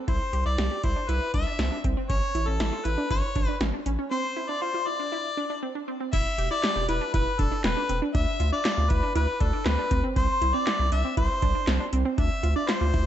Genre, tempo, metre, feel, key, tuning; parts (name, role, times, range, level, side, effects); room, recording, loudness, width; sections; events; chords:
synth-pop; 119 BPM; 4/4; straight; A4 = 440 Hz
wide unison pluck; arpeggios; 0.0-13.0 s; C4 to G4; -32 LUFS; right 3 dB; diffuse ambient delay
clear harmonica; melody; 0.1-13.1 s; A4 to E5; -28 LUFS; left 2 dB; diffuse ambient delay
round analog bass; bass; 0.1-13.0 s; E1 to D2; -27 LUFS; equal
electro analog drum machine; drums; 0.1-13.1 s; crash cymbal, handclaps, hi-hat, kick drum, snare drum; -28 LUFS; equal
moderate plate reverb, RT60 1.3 s; dreamy mix soaked in reverb, nothing above 8.0 kHz; -23 LUFS; side -11 dB against mid
0.0-6.1 A section; 6.1-13.1 B section
break 4.1-6.1
0.1 C; 2.1 A; 4.1 Csus2; 6.1 Em; 8.1 Dm; 10.2 C; 12.2 Dm